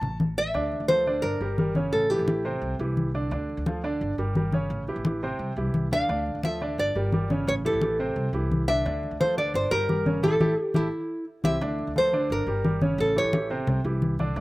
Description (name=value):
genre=latin, Cuban son and guajira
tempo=173 BPM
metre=4/4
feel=straight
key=D minor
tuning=A4 = 440 Hz
part: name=warm grand piano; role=arpeggios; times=0.0-14.4 s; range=C3 to A5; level=-30 LUFS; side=right 2 dB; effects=none
part: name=upright bass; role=bass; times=0.0-14.4 s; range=G1 to D2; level=-31 LUFS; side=equal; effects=none
part: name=congas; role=percussion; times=0.0-14.4 s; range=none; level=-28 LUFS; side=left 1 dB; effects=none
part: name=nylon-string guitar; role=melody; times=0.4-2.4, 5.9-13.5 s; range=E4 to F5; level=-26 LUFS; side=equal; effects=none
room=little or no reverb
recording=recorded outdoors, with no room sound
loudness=-23 LUFS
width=side -19 dB against mid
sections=0.5-11.6 A section; 11.6-14.4 A section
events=band accent 10.2-11.6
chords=0.0 A5; 0.5 Dmadd9; 1.2 Gm; 1.9 A7; 2.6 C; 3.3 Dm; 4.0 Gm; 4.7 A7; 5.4 C; 6.1 Dmadd9; 6.8 Gm; 7.5 A7; 8.2 C; 8.9 Dmadd9; 9.5 Gm; 10.2 A5; 10.9 C; 11.6 Dmadd9; 12.3 Gm; 13.0 A7; 13.7 C